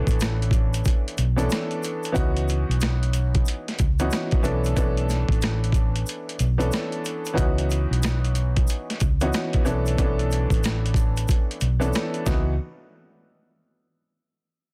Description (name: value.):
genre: hip hop, boom-bap hip-hop.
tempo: 92 BPM.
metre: 4/4.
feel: swing 63% on 16ths.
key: C# phrygian.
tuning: A4 = 440 Hz.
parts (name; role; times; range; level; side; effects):
warm upright piano; accompaniment; 0.0-12.5 s; E3 to A4; -30 LUFS; equal; cassette tape.
hollow-body short-scale fingered electric bass; bass; 0.0-12.6 s; A1 to C#2; -26 LUFS; equal; none.
boom bap sampler-style drum kit; drums; 0.1-12.5 s; hi-hat, kick drum, rim click, snare drum; -26 LUFS; equal; overdrive.
egg shaker; percussion; 0.1-12.6 s; none; -43 LUFS; equal; none.
room: digital ambience.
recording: dense, heavily limited modern master.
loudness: -23 LUFS.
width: mono.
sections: 0.0-2.2 A section; 2.2-12.6 B section; 12.6-14.7 C section.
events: none.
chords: 0.0 Bm11; 2.2 C#m11; 4.4 Bm11; 7.4 C#m11; 9.7 Bm11; 12.3 C#m11; 12.6 N.C..